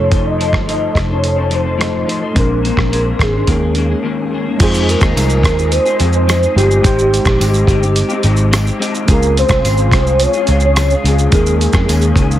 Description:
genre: indie pop, bedroom pop.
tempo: 107 BPM.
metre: 4/4.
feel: straight.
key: unclear.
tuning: A4 = 440 Hz.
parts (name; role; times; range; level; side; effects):
soft octave-layered synth lead; melody; 0.0-12.4 s; G4 to Eb5; -17 LUFS; equal; tremolo, ensemble chorus, tape echo.
electric guitar through a small old amp; accompaniment; 0.0-12.4 s; Db3 to C5; -20 LUFS; left 5 dB; ensemble chorus, warbly pitch drift.
tine electric piano; accompaniment; 0.0-12.4 s; Ab3 to Eb5; -22 LUFS; right 3 dB; cassette tape.
vintage muted picked electric bass; bass; 0.0-12.4 s; F1 to F2; -15 LUFS; equal; none.
dusty soul sampler-style drum kit; drums; 0.1-12.4 s; crash cymbal, hi-hat, kick drum, rim click, shaker; -16 LUFS; equal; none.
tambourine; percussion; 5.2-12.0 s; none; -30 LUFS; right 4 dB; none.
room: digital ambience.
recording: heavily compressed radio sound.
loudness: -11 LUFS.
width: side -12 dB against mid.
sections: 0.0-4.6 A section; 4.6-12.4 B section.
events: break 4.0-4.6.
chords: 0.0 F7; 2.4 Bb9; 3.5 Eb7sus4; 4.6 Fm7; 6.8 Abmaj7; 9.1 Dbmaj7; 11.3 Eb7sus4.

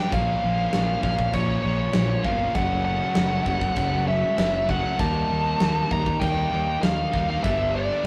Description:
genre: quiet-loud alternative rock.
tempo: 98 BPM.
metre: 4/4.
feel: straight.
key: unclear.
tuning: A4 = 439 Hz.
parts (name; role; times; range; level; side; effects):
high-gain lead guitar; melody; 0.0-8.1 s; Db5 to Bb5; -28 LUFS; equal; distortion, analog delay.
overdriven electric guitar; riff; 0.0-8.1 s; F#2 to Eb4; -37 LUFS; equal; none.
thick fuzz guitar; riff; 0.0-8.1 s; F#2 to Eb4; -34 LUFS; equal; distortion.
tight distorted guitar; riff; 0.0-8.1 s; F#2 to Eb4; -37 LUFS; equal; distortion.
fuzz fingered electric bass; bass; 0.1-8.1 s; F#1 to Eb2; -29 LUFS; equal; overdrive.
big rock drum kit; drums; 0.1-8.1 s; crash cymbal, kick drum, snare drum; -30 LUFS; equal; none.
room: moderate studio reverb, RT60 0.5 s.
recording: rough rehearsal-room recording.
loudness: -23 LUFS.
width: mono.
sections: 0.0-8.1 A section.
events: none.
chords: 0.1 Bbm; 2.5 F#m; 5.0 Eb; 7.4 G.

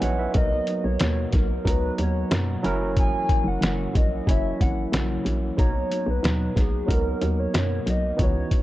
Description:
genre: indie pop, bedroom pop.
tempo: 92 BPM.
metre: 4/4.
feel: straight.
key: B major.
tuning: A4 = 437 Hz.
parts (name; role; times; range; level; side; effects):
barky tine electric piano; accompaniment; 0.0-8.6 s; E3 to A#5; -29 LUFS; right 3 dB; overdrive.
mellow electric guitar; accompaniment; 0.0-8.6 s; F#2 to F#4; -33 LUFS; left 3 dB; wide subtle chorus, warbly pitch drift.
hollow knocking FM bass; bass; 0.0-8.5 s; F#1 to F#2; -26 LUFS; equal; none.
lo-fi sampler-style drum kit; drums; 0.0-8.6 s; hi-hat, kick drum, snare drum; -23 LUFS; equal; none.
warbly nostalgic lead; melody; 0.4-8.6 s; G#4 to G#5; -30 LUFS; left 1 dB; lush chorus, tape echo.
room: digital ambience.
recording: dry, gritty hardware recording, cassette tape.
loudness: -21 LUFS.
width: side -16 dB against mid.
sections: 0.0-8.6 A section.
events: none.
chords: 0.4 Bmaj7; 2.6 F#7; 5.6 Bmaj7.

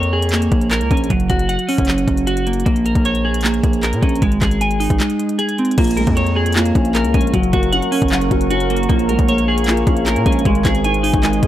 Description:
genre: hip hop, trap.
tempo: 154 BPM.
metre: 4/4.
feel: half-time.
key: Bb minor.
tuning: A4 = 435 Hz.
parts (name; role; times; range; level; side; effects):
clean electric guitar; arpeggios; 0.0-11.5 s; Gb3 to Ab5; -17 LUFS; right 2 dB; analog chorus, tape echo.
distorted 808-style bass; bass; 0.0-11.5 s; Gb1 to Bb2; -20 LUFS; equal; distortion.
trap drum kit; drums; 0.0-11.5 s; crash cymbal, handclaps, hi-hat, kick drum; -20 LUFS; equal; none.
felt-muted upright piano; accompaniment; 5.8-11.5 s; Bb2 to Ab5; -22 LUFS; left 4 dB; none.
deep dark ambient pad; sustained chords; 6.5-11.5 s; Bb4 to Eb6; -25 LUFS; right 1 dB; chorus, built-in reverb.
room: little or no reverb.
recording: dry, gritty hardware recording.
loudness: -14 LUFS.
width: side -13 dB against mid.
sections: 0.0-5.8 A section; 5.8-11.5 B section.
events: kick muted 5.0-5.8.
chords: 0.0 Bbm7; 1.1 Gb5; 2.7 Bbm7; 4.2 Ab; 5.8 Bbm7; 7.3 Gb; 8.9 Bbm7; 10.5 Ab.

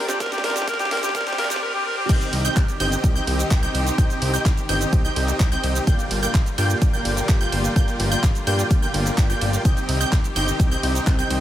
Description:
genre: EDM, festival progressive house.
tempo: 127 BPM.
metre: 4/4.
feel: straight.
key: C minor.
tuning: A4 = 440 Hz.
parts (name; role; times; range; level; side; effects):
warm alto saxophone; melody; 0.0-2.1 s; G4 to Bb4; -26 LUFS; equal; dub echo.
bright grand piano; accompaniment; 0.0-2.1 s; D3 to D4; -34 LUFS; right 2 dB; sidechain pumping, dub echo.
clear studio string section; sustained chords; 0.0-11.4 s; D3 to Bb5; -31 LUFS; left 1 dB; vintage 12-bit sampler grit, sidechain pumping.
dense compressed supersaw; riff; 0.0-11.4 s; Bb3 to G5; -27 LUFS; equal; vintage 12-bit sampler grit, sidechain pumping, dub echo.
fat analog bass; bass; 0.0-11.4 s; G1 to Bb2; -25 LUFS; equal; sidechain pumping, high-pass filter.
riser and swell; sound effects; 0.1-2.1 s; none; -34 LUFS; equal; none.
house drum kit; drums; 0.1-11.4 s; crash cymbal, handclaps, hi-hat, ride cymbal, shaker, snare drum; -29 LUFS; right 2 dB; none.
electronic kick drum; drums; 0.2-11.2 s; none; -19 LUFS; equal; none.
wide unison pluck; arpeggios; 2.1-11.4 s; G6; -28 LUFS; right 2 dB; phaser, sidechain pumping, dub echo.
room: digital ambience.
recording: high-pass filter.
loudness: -18 LUFS.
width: side -12 dB against mid.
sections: 0.0-2.1 A section; 2.1-11.4 B section.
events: build-up 0.0-2.1; drum fill 0.0-1.6; riser 0.1-2.1; swell 1.1-2.1; drop 2.1-11.4.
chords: 0.0 Bb; 2.1 Cm; 5.9 Gm7; 9.7 Cm.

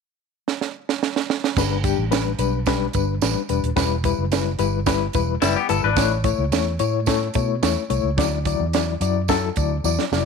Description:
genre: uptempo 1960s-style soul.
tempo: 109 BPM.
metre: 4/4.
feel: straight.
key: G major.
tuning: A4 = 440 Hz.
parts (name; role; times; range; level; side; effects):
compact cocktail drum kit; drums; 0.5-10.3 s; crash cymbal, hi-hat, kick drum, snare drum; -23 LUFS; right 8 dB; none.
reed electric piano; accompaniment; 1.6-10.3 s; F#3 to D5; -23 LUFS; left 13 dB; fast tremolo.
vintage muted fingered electric bass; bass; 1.6-10.2 s; Eb1 to B2; -24 LUFS; right 1 dB; none.
tambourine; percussion; 1.6-10.3 s; none; -33 LUFS; right 18 dB; none.
electric guitar through a small old amp; riff; 5.4-6.1 s; G3 to B4; -22 LUFS; left 11 dB; none.
room: light reverb, small room reverb.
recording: 1960s-style stereo with parts hard left and right.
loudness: -19 LUFS.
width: side -5 dB against mid.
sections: 0.0-1.6 A section; 1.6-10.3 B section.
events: drum fill 0.5-1.6, 9.8-10.3.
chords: 0.0 N.C.; 1.6 G; 3.8 Em; 6.0 A; 8.2 Dadd9.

